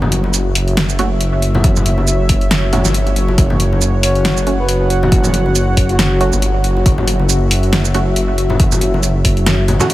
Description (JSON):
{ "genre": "deep dubstep", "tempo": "138 BPM", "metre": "4/4", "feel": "swing 56% on 16ths, half-time", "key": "unclear", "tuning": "A4 = 440 Hz", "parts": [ { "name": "dark analog pad", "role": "sustained chords", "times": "0.0-9.9 s", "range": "F#4 to F#5", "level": "-20 LUFS", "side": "equal", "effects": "chorus" }, { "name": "dark detuned saw bass", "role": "bass", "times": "0.0-9.8 s", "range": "F#1 to G1", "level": "-15 LUFS", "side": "equal", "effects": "none" }, { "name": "congas", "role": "percussion", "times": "0.0-9.9 s", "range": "none", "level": "-22 LUFS", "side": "left 2 dB", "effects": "dub echo" }, { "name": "deep house drum kit", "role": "drums", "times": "0.1-9.9 s", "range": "hi-hat, shaker, snare drum", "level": "-19 LUFS", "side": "right 1 dB", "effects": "none" }, { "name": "filtered dub chord stab", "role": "stabs", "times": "1.0-9.9 s", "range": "A3 to F#4", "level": "-25 LUFS", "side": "right 3 dB", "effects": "none" }, { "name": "electronic kick drum", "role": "drums", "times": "1.6-9.3 s", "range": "none", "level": "-14 LUFS", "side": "equal", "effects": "none" }, { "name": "breathy flute-like synth lead", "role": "melody", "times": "4.0-6.3 s", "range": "F#4 to C#5", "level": "-24 LUFS", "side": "equal", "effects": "chorus, dub echo" } ], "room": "digital ambience", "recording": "none", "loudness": "-12 LUFS", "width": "side -16 dB against mid", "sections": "0.0-9.9 A section", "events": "none", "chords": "0.0 F#m" }